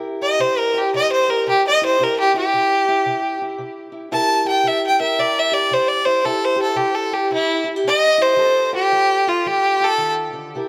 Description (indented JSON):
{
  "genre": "acoustic country blues, solo or duo",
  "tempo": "112 BPM",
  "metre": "4/4",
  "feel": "swing 63% on 8ths",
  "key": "C mixolydian",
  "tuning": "A4 = 439 Hz",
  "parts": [
    { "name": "fingerpicked steel-string acoustic guitar", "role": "accompaniment", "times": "0.0-10.7 s", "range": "C3 to Bb4", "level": "-28 LUFS", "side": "equal", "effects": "none" },
    { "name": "bright fiddle", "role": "melody", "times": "0.2-10.1 s", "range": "E4 to A5", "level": "-18 LUFS", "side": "equal", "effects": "none" }
  ],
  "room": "moderate lush hall reverb, RT60 3.0 s",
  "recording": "rough home demo mix",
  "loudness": "-18 LUFS",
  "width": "mono",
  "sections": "0.0-10.7 A section",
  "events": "fiddle solo 0.0-10.7",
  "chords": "0.0 C7; 8.4 F7"
}